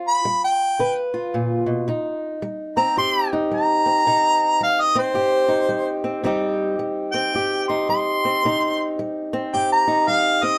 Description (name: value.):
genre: acoustic country blues, solo or duo.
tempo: 110 BPM.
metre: 4/4.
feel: swing 62% on 8ths.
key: C minor.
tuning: A4 = 440 Hz.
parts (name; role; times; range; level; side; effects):
fingerpicked old ladder-braced acoustic guitar; accompaniment; 0.0-10.6 s; G2 to B4; -25 LUFS; equal; none.
mellow harmonica; melody; 0.1-10.6 s; C5 to C6; -21 LUFS; equal; none.
room: light reverb.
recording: close, detailed microphones.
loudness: -21 LUFS.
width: mono.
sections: 0.0-6.2 A section; 6.2-10.6 A section.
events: harmonica solo 0.0-6.2, 6.2-10.6.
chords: 0.0 G7#9; 1.9 Cm.